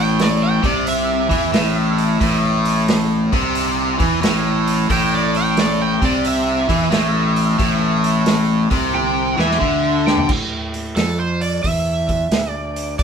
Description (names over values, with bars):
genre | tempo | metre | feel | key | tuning
blues rock power trio and southern rock | 89 BPM | 4/4 | swing 66% on 8ths | A minor | A4 = 440 Hz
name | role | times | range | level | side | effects
overdriven slide guitar | melody | 0.0-13.0 s | A4 to G5 | -23 LUFS | right 4 dB | analog delay
biting overdriven guitar | riff | 0.0-10.3 s | A2 to E3 | -17 LUFS | left 1 dB | none
fuzz fingered electric bass | bass | 0.0-13.0 s | A1 to A2 | -23 LUFS | equal | overdrive
vintage drum kit | drums | 0.2-13.0 s | crash cymbal, hi-hat, kick drum, snare drum, toms | -22 LUFS | right 1 dB | none
room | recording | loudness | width
wet studio reverb, RT60 0.5 s | band playing live in one room | -15 LUFS | side -7 dB against mid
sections
0.0-10.3 A section; 10.3-13.0 B section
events
drum fill 8.9-10.3; electric slide guitar solo 10.3-13.0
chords
0.0 Am; 10.3 A5